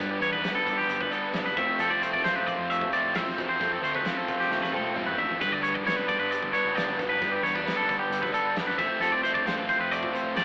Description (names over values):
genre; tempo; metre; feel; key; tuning
math rock and midwest emo; 133 BPM; 4/4; straight; unclear; A4 = 440 Hz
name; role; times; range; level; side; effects
twangy electric guitar; accompaniment; 0.0-10.4 s; F2 to A4; -38 LUFS; equal; harmonic tremolo
twangy electric guitar; arpeggios; 0.0-10.4 s; G4 to E5; -29 LUFS; equal; spring reverb
overdriven electric guitar; riff; 0.0-10.4 s; F2 to D4; -32 LUFS; equal; spring reverb
growling fingered electric bass; bass; 0.0-10.4 s; E1 to G2; -44 LUFS; equal; overdrive
loose indie drum kit; drums; 0.2-10.4 s; hi-hat, kick drum, snare drum, splash cymbal, toms; -39 LUFS; equal; none
room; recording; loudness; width
moderate studio reverb, RT60 0.7 s; band playing live in one room, AM radio sound; -27 LUFS; mono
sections
0.0-10.4 A section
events
drum fill 4.5-5.4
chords
0.0 Gmaj7; 1.6 Fmaj7; 5.4 G; 8.8 Fmaj7